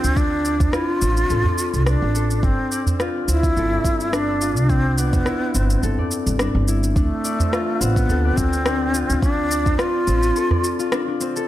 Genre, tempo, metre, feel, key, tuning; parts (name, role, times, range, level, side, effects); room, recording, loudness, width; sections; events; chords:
organic downtempo; 106 BPM; 4/4; swing 54% on 16ths; D dorian; A4 = 441 Hz
breathy bright low ney; melody; 0.0-11.2 s; A3 to F4; -23 LUFS; equal; tape echo
concert harp; arpeggios; 0.0-11.5 s; C4 to D5; -25 LUFS; left 2 dB; low-pass filter, tape echo
upright bass; bass; 0.0-10.3 s; G1 to D2; -21 LUFS; equal; sidechain pumping
electronic shaker and rim click; drums; 0.0-11.5 s; -27 LUFS; equal; overdrive
electronic kick drum; drums; 0.2-9.8 s; -21 LUFS; equal; overdrive
udu; percussion; 0.6-10.6 s; -23 LUFS; right 1 dB
light reverb, studio ambience; -17 LUFS; side -14 dB against mid
0.0-11.5 A section
break 10.4-11.5
0.0 Dm7; 2.4 G9sus4; 4.7 Cmaj7; 7.0 Dm7